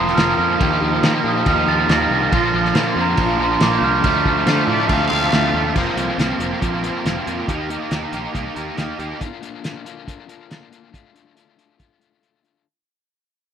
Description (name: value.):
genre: indie rock.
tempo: 139 BPM.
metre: 4/4.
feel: straight.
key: unclear.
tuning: A4 = 435 Hz.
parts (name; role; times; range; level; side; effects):
glockenspiel with rubber mallets; melody; 0.0-5.3 s; Bb5 to Bb6; -21 LUFS; right 2 dB; digital delay.
overdriven electric guitar; riff; 0.0-12.6 s; F2 to G4; -25 LUFS; left 10 dB; harmonic tremolo.
thick fuzz guitar; riff; 0.0-9.2 s; F3 to G4; -21 LUFS; right 6 dB; distortion, ensemble chorus.
picked electric bass; bass; 0.0-9.1 s; F1 to Eb3; -25 LUFS; equal; none.
cloth-damped thuddy drum kit; drums; 0.1-12.5 s; crash cymbal, hi-hat, kick drum, snare drum; -23 LUFS; equal; none.
growling trumpet; second line; 4.5-5.7 s; C5 to F5; -23 LUFS; left 6 dB; none.
room: light reverb.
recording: rough home demo mix.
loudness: -16 LUFS.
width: side -8 dB against mid.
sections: 0.0-5.7 A section; 5.7-12.7 B section.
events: fade-out 5.7-12.7.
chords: 0.0 Fsus4; 0.6 Ebadd9; 2.3 Bb; 4.0 Dm7; 5.7 Fsus4; 7.5 Eb; 9.2 Bb; 10.9 Dm.